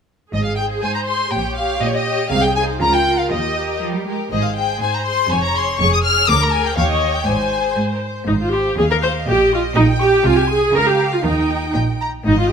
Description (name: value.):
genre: quick classical-period movement for string orchestra.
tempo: 121 BPM.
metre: 2/4.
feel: straight.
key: Ab major.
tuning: A4 = 440 Hz.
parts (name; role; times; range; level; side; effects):
warm chamber violin section; melody; 0.3-12.1 s; Db5 to F6; -19 LUFS; left 4 dB; none.
rich chamber viola section; accompaniment; 0.3-12.5 s; Eb4 to Db5; -19 LUFS; right 1 dB; none.
clear chamber cello section; bass; 0.3-12.5 s; D2 to Ab3; -23 LUFS; right 2 dB; none.
clear chamber double bass section; bass; 0.3-12.5 s; F1 to Eb2; -23 LUFS; right 2 dB; none.
rich symphonic violin section; second line; 0.6-12.5 s; Eb4 to Ab5; -27 LUFS; left 2 dB; none.
room: light reverb.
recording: close, detailed microphones.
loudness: -15 LUFS.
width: side -7 dB against mid.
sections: 0.3-8.3 A section; 8.3-12.5 B section.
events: none.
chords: 0.3 Ab; 1.3 Bbm6; 2.3 Ab/C; 2.8 Bbm/Db; 3.3 Eb; 4.3 Ab; 5.3 Db/F; 6.3 Bb7/D; 6.8 Eb7; 7.3 Ab; 9.3 Eb7/Bb; 10.2 Ab/C; 10.7 Bbm/Db; 11.2 Eb.